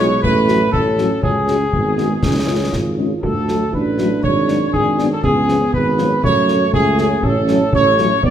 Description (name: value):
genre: military-style march for wind band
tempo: 120 BPM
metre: 2/4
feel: straight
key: F# minor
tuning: A4 = 440 Hz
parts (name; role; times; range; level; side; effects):
- clear trumpet section; melody; 0.0-8.3 s; G#4 to D5; -18 LUFS; equal; none
- warm euphonium; second line; 0.0-8.3 s; G#3 to F#4; -21 LUFS; right 3 dB; none
- dark French horn section; accompaniment; 0.0-8.1 s; E#3 to F#4; -24 LUFS; left 4 dB; none
- mellow tuba; bass; 0.0-8.3 s; G#1 to F#2; -20 LUFS; right 1 dB; none
- concert bass drum and concert snare drum; drums; 0.2-8.3 s; none; -22 LUFS; left 1 dB; none
room: wet recital hall reverb, RT60 1.7 s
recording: minimal, uncompressed stereo recording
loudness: -14 LUFS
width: side -10 dB against mid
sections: 0.0-8.3 A section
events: none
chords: 0.2 F#m/A; 1.2 C#sus4; 2.2 C#; 3.2 D; 4.2 G#m7b5; 5.2 C#7; 6.2 F#m; 7.2 F#m/A